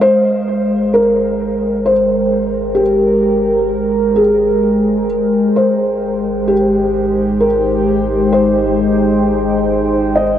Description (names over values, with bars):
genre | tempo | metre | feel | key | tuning
ambient | 65 BPM | 3/4 | straight | Ab major | A4 = 441 Hz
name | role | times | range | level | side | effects
felt-muted upright piano | melody | 0.0-10.4 s | G4 to Eb5 | -15 LUFS | equal | tape echo
warbly tape-like pad | sustained chords | 0.0-10.4 s | Ab3 to G5 | -14 LUFS | equal | chorus, built-in reverb
warm sub bass | bass | 0.0-10.4 s | Ab1 | -28 LUFS | equal | none
room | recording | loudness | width
wet huge ambient reverb, RT60 8.7 s | worn, warbling old tape, cassette tape, warbly pitch drift | -12 LUFS | side -10 dB against mid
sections
0.0-10.4 A section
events
fade-in on sub bass 0.0-10.4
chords
0.0 Abmaj9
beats
| 0.04 0.96 1.88 | 2.81 3.73 4.65 | 5.58 6.50 7.42 | 8.34 9.27 10.19